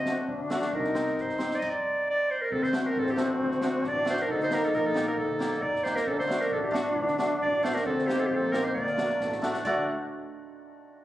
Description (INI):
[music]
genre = klezmer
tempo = 135 BPM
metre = 2/4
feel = straight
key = D phrygian dominant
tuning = A4 = 439 Hz
[part]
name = clear clarinet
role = melody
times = 0.0-9.9 s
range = F#4 to Eb5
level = -29 LUFS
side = right 1 dB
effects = none
[part]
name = bright reedy alto flute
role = second line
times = 0.0-9.8 s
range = A3 to Eb4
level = -29 LUFS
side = left 1 dB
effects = none
[part]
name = warm double bass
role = bass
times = 0.0-9.9 s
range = A1 to G2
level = -39 LUFS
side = equal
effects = none
[part]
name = hammered dulcimer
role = accompaniment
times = 0.1-9.9 s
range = A3 to A4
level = -33 LUFS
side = equal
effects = none
[part]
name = open jazz drum kit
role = drums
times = 0.1-9.8 s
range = crash cymbal, kick drum, snare drum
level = -37 LUFS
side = right 2 dB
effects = none
[sound]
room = moderate recital hall reverb, RT60 1.3 s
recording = recorded on a phone in the room, club reverb, compression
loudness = -25 LUFS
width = side -14 dB against mid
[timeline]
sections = 0.0-2.5 A section; 2.5-9.6 B section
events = drum fill 5.8, 9.2-9.6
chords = 0.0 D; 0.7 Cm; 1.6 N.C.; 2.5 D; 4.3 Eb; 6.1 D; 7.9 Eb/D; 8.7 D